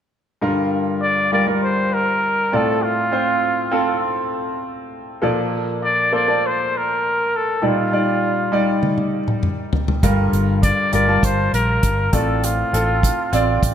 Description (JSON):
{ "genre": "piano-driven pop", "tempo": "100 BPM", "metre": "4/4", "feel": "straight", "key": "unclear", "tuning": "A4 = 442 Hz", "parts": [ { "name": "clear concert grand piano", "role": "accompaniment", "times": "0.4-13.7 s", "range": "G2 to A5", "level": "-20 LUFS", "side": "equal", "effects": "wide subtle chorus" }, { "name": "breathy trumpet", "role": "melody", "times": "1.0-13.6 s", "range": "F4 to D5", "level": "-20 LUFS", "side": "left 1 dB", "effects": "none" }, { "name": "unplugged drum kit", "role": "drums", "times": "8.8-13.7 s", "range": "hi-hat, kick drum, toms", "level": "-20 LUFS", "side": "equal", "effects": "gated reverb" }, { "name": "vintage muted fingered electric bass", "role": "bass", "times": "10.0-13.7 s", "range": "G1 to Bb1", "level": "-21 LUFS", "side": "equal", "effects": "none" } ], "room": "moderate lush hall reverb, RT60 1.9 s", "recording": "bright 1980s-style digital production", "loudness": "-16 LUFS", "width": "side -9 dB against mid", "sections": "0.4-13.7 A section", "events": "drum fill 8.8-10.0", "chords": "0.4 Gm7; 2.5 Dm7/A; 5.2 Bbmaj7; 7.6 Ebmaj7; 10.0 Gm7; 12.1 Dm7/A" }